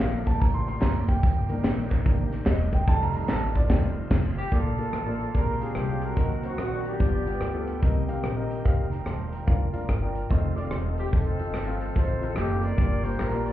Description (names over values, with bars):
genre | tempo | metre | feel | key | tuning
uptempo gospel | 145 BPM | 4/4 | swing 64% on 8ths | Bb major | A4 = 440 Hz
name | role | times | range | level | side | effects
warm concert grand piano | accompaniment | 0.0-13.5 s | G2 to C6 | -32 LUFS | left 1 dB | none
bright tonewheel organ | sustained chords | 0.0-13.5 s | D3 to G4 | -38 LUFS | right 4 dB | slow rotary speaker, overdrive, chorus vibrato
upright bass | bass | 0.0-13.5 s | E1 to Eb2 | -28 LUFS | equal | none
tight funk drum kit | drums | 0.0-13.5 s | crash cymbal, hi-hat, kick drum, rim click, snare drum | -25 LUFS | equal | none
handclaps and tambourine | percussion | 0.0-3.6, 11.1-13.5 s | none | -42 LUFS | right 2 dB | none
warm horn section | melody | 4.4-7.7, 11.0-13.5 s | Cb4 to D5 | -32 LUFS | left 1 dB | none
electric guitar with an envelope filter | second line | 10.3-11.4 s | Eb4 to D5 | -43 LUFS | right 4 dB | tape echo
room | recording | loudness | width
light reverb | heard muffled through a wall, club reverb, EQ | -23 LUFS | side -13 dB against mid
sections
0.0-4.5 A section; 4.5-13.5 B section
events
grand piano solo 0.0-4.5; band accent 3.7-4.5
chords
0.0 Gm7; 1.2 Cm7/G; 2.9 F7; 4.5 Bbmaj7; 5.3 Bb13; 6.2 Ebm6; 7.0 G7; 7.8 Cm7; 8.6 F9sus4; 9.5 Bb/F; 10.3 F7; 12.8 Gm7